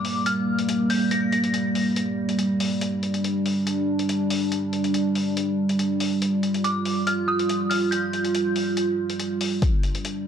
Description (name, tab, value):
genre	deep dubstep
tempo	141 BPM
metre	4/4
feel	half-time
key	G minor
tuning	A4 = 440 Hz
part	dark detuned synth bell	melody	0.0-2.6, 6.6-9.2 s	D6 to Bb6	-28 LUFS	left 1 dB	chorus, dub echo
part	dark analog pad	sustained chords	0.0-10.3 s	G3 to F4	-23 LUFS	right 1 dB	chorus
part	electronic hi-hat	drums	0.0-10.1 s	none	-32 LUFS	left 4 dB	none
part	electronic kick drum	drums	9.6-9.7 s	none	-21 LUFS	left 1 dB	overdrive
room	moderate echo chamber reverb, RT60 1.4 s, digital ambience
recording	dark, warm production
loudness	-21 LUFS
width	side -8 dB against mid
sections	0.0-9.6 A section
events	none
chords	0.0 Gm; 9.6 G5